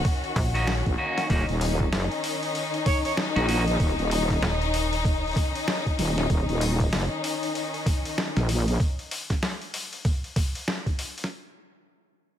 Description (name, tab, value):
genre	glitch hop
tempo	96 BPM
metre	4/4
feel	swing 60% on 16ths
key	Eb minor pentatonic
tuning	A4 = 438 Hz
part	clear studio string section	sustained chords	0.0-8.8 s	Eb3 to Gb4	-29 LUFS	left 4 dB	sidechain pumping
part	wobble bass	bass	0.0-8.8 s	Eb1 to Bb1	-24 LUFS	equal	chorus
part	boom bap sampler-style drum kit	drums	0.0-11.4 s	hi-hat, snare drum	-31 LUFS	left 1 dB	none
part	electronic kick drum	drums	0.0-11.0 s	none	-25 LUFS	equal	none
part	slap-like FM bass	bass	0.4-5.3 s	Eb1 to Bb1	-27 LUFS	equal	tube saturation
part	clean electric guitar	stabs	0.5-3.6 s	Bb3 to Gb4	-32 LUFS	right 1 dB	sidechain pumping, dub echo
part	mellow harmonica	melody	2.9-3.1 s	Db5	-33 LUFS	right 2 dB	none
room	light reverb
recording	none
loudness	-23 LUFS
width	side -10 dB against mid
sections	0.0-11.3 A section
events	drop 0.0-11.3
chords	0.0 Ebm7